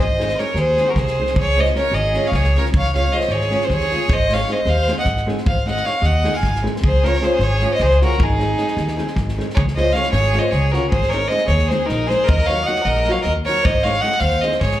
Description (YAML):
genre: balkan folk, Balkan wedding band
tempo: 308 BPM (eighths)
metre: 7/8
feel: straight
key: Ab mixolydian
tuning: A4 = 441 Hz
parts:
  - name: clear fiddle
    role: melody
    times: 0.0-14.8 s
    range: Ab4 to Ab5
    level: -20 LUFS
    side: equal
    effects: slapback echo
  - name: clear violin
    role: second line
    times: 0.0-14.8 s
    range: Eb4 to F5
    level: -24 LUFS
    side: equal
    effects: slapback echo
  - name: upright bass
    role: bass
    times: 0.0-14.8 s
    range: Ab1 to Ab2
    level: -20 LUFS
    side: equal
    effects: none
  - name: nylon-string guitar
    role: accompaniment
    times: 0.2-14.5 s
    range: Gb3 to Ab4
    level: -26 LUFS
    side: equal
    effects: slapback echo
  - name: natural country drum kit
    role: percussion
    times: 0.2-14.8 s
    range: kick drum, snare drum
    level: -24 LUFS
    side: equal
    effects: none
room: light reverb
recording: live gig heard through the venue's PA, club reverb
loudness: -15 LUFS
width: side -13 dB against mid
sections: 0.0-9.6 A section; 9.6-14.8 B section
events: none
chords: 0.0 Ab; 1.4 Db; 4.1 Ab; 6.8 Db; 8.2 Ab; 9.6 Db; 10.9 Ab; 12.3 Ebm; 13.6 Ab